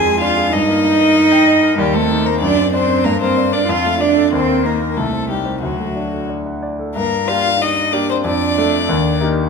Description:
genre	quick classical-period movement for piano trio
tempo	94 BPM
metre	2/4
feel	straight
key	G minor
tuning	A4 = 440 Hz
part	rich violin	melody	0.0-9.2 s	F#4 to Ab5	-19 LUFS	left 8 dB	none
part	warm cello	second line	0.0-9.2 s	F#3 to Ab4	-17 LUFS	right 4 dB	none
part	warm grand piano	accompaniment	0.0-9.5 s	C2 to G5	-19 LUFS	left 2 dB	none
room	wet recital hall reverb, RT60 1.5 s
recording	minimal, uncompressed stereo recording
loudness	-13 LUFS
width	side -5 dB against mid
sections	0.0-7.0 A section; 7.0-9.5 B section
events	none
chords	0.0 Ddim/F; 0.5 Eb/G; 1.8 Cm/Eb; 2.4 D7/F#; 3.1 Gm; 3.7 Dm/F; 4.3 Eb5; 5.0 Am7b5/C; 5.6 D; 7.0 Gm; 8.2 Dm/F; 8.9 Eb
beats	| 0.52 1.15 | 1.79 2.42 | 3.05 3.69 | 4.33 4.97 | 5.63 6.29 | 6.96 7.60 | 8.25 8.88

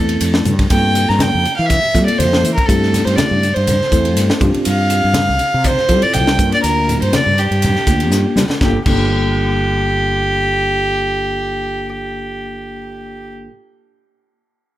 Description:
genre	electric jazz fusion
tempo	122 BPM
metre	4/4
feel	swing 54% on 16ths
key	G dorian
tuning	A4 = 440 Hz
part	rich violin	melody	0.0-13.3 s	G4 to Bb5	-18 LUFS	right 1 dB	slapback echo
part	bell-like tine electric piano	accompaniment	0.0-13.5 s	A3 to Bb4	-21 LUFS	left 1 dB	medium stereo tremolo
part	fretless electric bass	bass	0.0-13.5 s	G1 to G3	-18 LUFS	equal	none
part	crisp fusion drum kit	drums	0.1-9.0 s	crash cymbal, hi-hat, kick drum, ride cymbal, snare drum	-19 LUFS	equal	none
part	congas	percussion	0.2-9.0 s	none	-24 LUFS	left 2 dB	none
room	light reverb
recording	none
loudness	-13 LUFS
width	side -14 dB against mid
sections	0.0-8.6 A section; 8.6-12.6 B section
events	drum fill 8.1-8.6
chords	0.0 Fmaj9; 0.7 Gm11; 2.7 Am7/G; 4.4 Dm11; 6.4 Gm7; 8.6 Gm9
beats	0.21 | 0.71 1.21 1.70 2.20 | 2.69 3.18 3.68 4.17 | 4.67 5.16 5.65 6.15 | 6.64 7.13 7.62 8.12 | 8.61 9.11 9.60 10.09 | 10.59 11.08 11.58 12.07

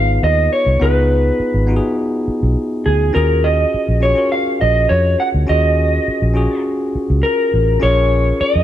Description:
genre	lush 1970s-style soul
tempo	103 BPM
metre	4/4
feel	straight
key	Eb minor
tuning	A4 = 440 Hz
part	electric guitar through a small old amp	melody	0.0-8.6 s	Ab4 to Gb5	-16 LUFS	equal	vibrato effect, slapback echo
part	bell-like tine electric piano	accompaniment	0.0-8.6 s	Cb4 to Cb5	-20 LUFS	left 1 dB	none
part	vintage muted fingered electric bass	bass	0.0-8.6 s	Ab1 to F2	-16 LUFS	equal	none
room	light reverb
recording	dark, warm production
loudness	-13 LUFS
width	side -12 dB against mid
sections	0.0-8.6 A section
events	none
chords	0.0 Db7; 3.1 Ebm11; 7.8 Bbm7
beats	0.23 | 0.81 1.39 1.98 2.56 | 3.15 3.73 4.31 4.90 | 5.48 6.06 6.65 7.23 | 7.81 8.40

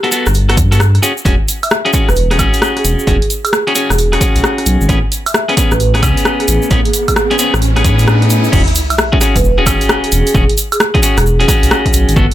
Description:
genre	UK garage, two-step garage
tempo	132 BPM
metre	4/4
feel	swing 64% on 16ths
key	E major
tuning	A4 = 440 Hz
part	electric guitar at the edge of break-up	stabs	0.0-12.3 s	B3 to A4	-16 LUFS	left 1 dB	dub echo
part	punchy analog drum machine	drums	0.0-12.3 s	crash cymbal, hi-hat, rim click, woodblock	-16 LUFS	equal	none
part	egg shaker	percussion	0.1-12.3 s	none	-23 LUFS	equal	none
part	dark detuned saw bass	bass	0.3-12.3 s	E1 to A2	-13 LUFS	equal	none
part	electronic kick drum	drums	0.6-12.3 s	none	-14 LUFS	equal	none
part	vibraphone with soft mallets	melody	1.6-11.4 s	G#4 to E5	-20 LUFS	right 3 dB	dub echo
part	riser and sub drop	sound effects	6.2-10.3 s	none	-21 LUFS	equal	none
room	light reverb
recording	none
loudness	-10 LUFS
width	side -13 dB against mid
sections	0.0-8.5 A section; 8.5-12.3 B section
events	riser 6.2-8.5; drop 8.5-12.3; impact 8.5-10.3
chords	0.0 Gmaj9; 1.0 E69; 4.9 Amaj9; 8.5 E69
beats	0.35 0.80 | 1.25 1.71 2.17 2.62 | 3.07 3.53 3.98 4.44 | 4.89 5.35 5.80 6.25 | 6.71 7.17 7.62 8.07 | 8.53 8.98 9.44 9.89 | 10.35 10.80 11.26 11.71 | 12.16

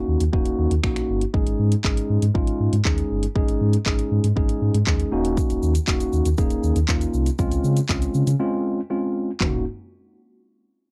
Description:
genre	dance-pop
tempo	119 BPM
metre	4/4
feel	straight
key	Eb dorian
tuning	A4 = 440 Hz
part	mellow tine electric piano	accompaniment	0.0-9.6 s	Ab3 to Ab4	-27 LUFS	equal	sidechain pumping, cassette tape, plate reverb
part	sub bass with octave	bass	0.1-9.6 s	Eb1 to Db3	-24 LUFS	equal	sidechain pumping
part	pop drum kit	drums	0.2-9.5 s	finger snaps, handclaps, hi-hat, kick drum, shaker, toms	-26 LUFS	equal	cassette tape
room	little or no reverb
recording	home recording on cassette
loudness	-22 LUFS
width	mono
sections	0.0-9.4 A section; 9.4-10.9 B section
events	break 8.4-9.4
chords	0.0 Ebm7; 1.3 Absus4; 5.1 Ebm7; 7.4 Dbmaj7; 9.4 Ebm7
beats	0.33 0.84 | 1.34 1.84 2.35 2.85 | 3.36 3.86 4.37 4.87 | 5.37 5.88 6.38 6.89 | 7.39 7.89 8.40 8.90 | 9.41

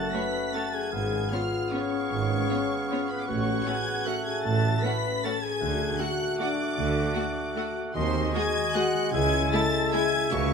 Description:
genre	classical, orchestral ballroom waltz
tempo	154 BPM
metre	3/4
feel	uneven beats, rubato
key	F# minor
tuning	A4 = 442 Hz
part	rich studio violin section	melody	0.0-10.5 s	B5 to B6	-33 LUFS	left 2 dB	none
part	dark clarinet	second line	0.0-10.5 s	E4 to G#4	-37 LUFS	left 1 dB	none
part	small flute group	second line	0.0-10.5 s	B4 to B5	-36 LUFS	left 4 dB	none
part	warm cor anglais	second line	0.0-10.5 s	D#5 to F#5	-36 LUFS	right 4 dB	none
part	warm bassoon	accompaniment	0.0-10.5 s	G#3 to B3	-35 LUFS	right 3 dB	none
part	mellow French horn section	sustained chords	0.0-10.5 s	B3 to B4	-32 LUFS	left 4 dB	none
part	concert harp	arpeggios	0.0-10.5 s	F#2 to C#5	-35 LUFS	left 11 dB	none
part	clear studio double bass section	bass	0.0-10.5 s	G#1 to D#2	-34 LUFS	right 5 dB	none
part	warm chamber cello section	bass	0.0-10.5 s	G#2 to D#3	-34 LUFS	right 4 dB	none
part	warm tuba	bass	0.0-10.5 s	G#1 to D#2	-36 LUFS	right 5 dB	none
part	rich studio violin section	second line	0.1-10.0 s	E4 to F#5	-39 LUFS	equal	none
part	rich chamber viola section	accompaniment	0.1-10.0 s	G#3 to F#4	-35 LUFS	right 1 dB	none
room	moderate scoring stage reverb, RT60 1.9 s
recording	none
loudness	-24 LUFS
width	side -6 dB against mid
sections	0.0-10.5 A section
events	none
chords	0.0 F#m; 0.9 C#7/G#; 3.3 F#m/A; 5.6 D; 8.0 G#7/D#; 9.1 C#m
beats	0.14 0.54 | 0.93 1.32 1.73 | 2.11 2.50 2.90 | 3.29 3.67 4.07 | 4.45 4.84 5.24 | 5.62 6.00 6.40 | 6.78 7.16 7.57 | 7.95 8.35 8.75 | 9.13 9.52 9.93 | 10.31

